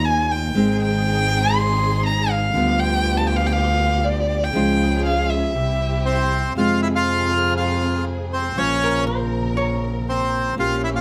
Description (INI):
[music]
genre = tango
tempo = 120 BPM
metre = 4/4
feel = rubato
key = F minor from 6.6 s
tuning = A4 = 442 Hz
[part]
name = warm violin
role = second line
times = 0.0-6.3 s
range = D5 to C6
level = -24 LUFS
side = equal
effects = none
[part]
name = nylon-string guitar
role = accompaniment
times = 0.0-11.0 s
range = C3 to Bb4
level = -26 LUFS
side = equal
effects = none
[part]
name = warm studio string section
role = stabs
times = 0.0-11.0 s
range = Db3 to Bb4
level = -33 LUFS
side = equal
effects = none
[part]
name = rich double bass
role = bass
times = 0.0-11.0 s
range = Ab1 to F2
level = -25 LUFS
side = equal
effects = none
[part]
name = bandoneon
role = melody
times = 6.1-11.0 s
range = C4 to F5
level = -23 LUFS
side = equal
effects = none
[part]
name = archtop guitar, miked and amplified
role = second line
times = 8.8-9.9 s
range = Bb4 to Db5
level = -29 LUFS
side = equal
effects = none
[sound]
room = light reverb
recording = close, detailed microphones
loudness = -20 LUFS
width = mono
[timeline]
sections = 0.0-6.6 A section; 6.6-11.0 B section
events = violin solo 0.0-6.6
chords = 0.0 Ebsus2; 0.6 Ab; 2.6 G7/D; 4.5 Db; 5.5 C; 6.6 Fm; 8.6 Bbmadd9